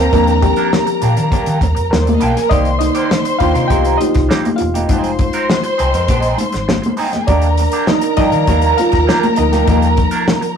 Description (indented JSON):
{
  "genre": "lush 1970s-style soul",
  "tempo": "100 BPM",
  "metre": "4/4",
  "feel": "straight",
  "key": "Eb major",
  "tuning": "A4 = 440 Hz",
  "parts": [
    { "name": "warm studio string section", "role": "second line", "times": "0.0-10.6 s", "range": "C4 to C6", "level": "-19 LUFS", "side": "right 1 dB", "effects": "none" },
    { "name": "bright reed electric piano", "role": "accompaniment", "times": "0.0-10.6 s", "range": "Eb3 to G5", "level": "-18 LUFS", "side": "left 1 dB", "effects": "overdrive, phaser" },
    { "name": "clean electric guitar", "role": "riff", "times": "0.0-10.5 s", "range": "Eb3 to Bb4", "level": "-22 LUFS", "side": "right 4 dB", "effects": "wah" },
    { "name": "hollow-body short-scale fingered electric bass", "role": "bass", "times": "0.0-10.0 s", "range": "Fb1 to Eb3", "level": "-17 LUFS", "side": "equal", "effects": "none" },
    { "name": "damped 70s drum kit", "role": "drums", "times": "0.1-10.6 s", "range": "hi-hat, kick drum, snare drum", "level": "-18 LUFS", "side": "equal", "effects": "none" },
    { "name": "congas", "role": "percussion", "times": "0.1-10.4 s", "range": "none", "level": "-22 LUFS", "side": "left 1 dB", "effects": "none" }
  ],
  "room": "moderate small room reverb, RT60 0.5 s",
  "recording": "rough rehearsal-room recording, warm saturation",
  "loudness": "-12 LUFS",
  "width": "side -7 dB against mid",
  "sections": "0.0-10.6 A section",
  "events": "reed electric piano solo 0.0-10.6",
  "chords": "0.0 Ebmaj7; 2.5 Cm7; 4.9 Fm7; 7.3 Ebmaj7",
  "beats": "| 0.12 0.72 1.32 1.91 | 2.51 3.11 3.71 4.30 | 4.90 5.50 6.09 6.69 | 7.29 7.89 8.48 9.08 | 9.68 10.28"
}